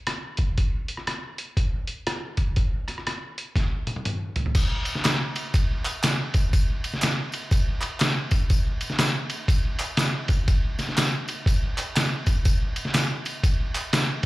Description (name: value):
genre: gospel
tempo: 122 BPM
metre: 4/4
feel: swing 62% on 8ths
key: none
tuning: none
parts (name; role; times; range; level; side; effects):
- trip hop sampler-style drum kit; drums; 0.1-14.3 s; crash cymbal, hi-hat, kick drum, ride cymbal, rim click, snare drum, toms; -23 LUFS; equal; none
- tambourine and handclaps; percussion; 4.5-14.1 s; none; -32 LUFS; equal; none
room: light reverb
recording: live gig heard through the venue's PA, club reverb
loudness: -22 LUFS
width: side -19 dB against mid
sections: 0.0-4.6 A section; 4.6-14.3 B section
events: drum fill 3.6-4.6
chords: none